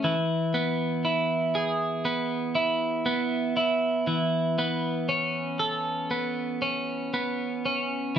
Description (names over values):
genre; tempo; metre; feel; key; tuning
pop; 59 BPM; 4/4; straight; unclear; A4 = 437 Hz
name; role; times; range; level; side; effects
twelve-string electric guitar; solo; 0.0-8.2 s; E3 to A4; -25 LUFS; right 1 dB; none
room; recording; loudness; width
moderate studio reverb, RT60 0.6 s; band playing live in one room; -25 LUFS; side -9 dB against mid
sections
0.0-8.2 A section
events
none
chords
0.0 E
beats
| 0.04 1.04 2.05 3.06 | 4.07 5.09 6.10 7.13 | 8.16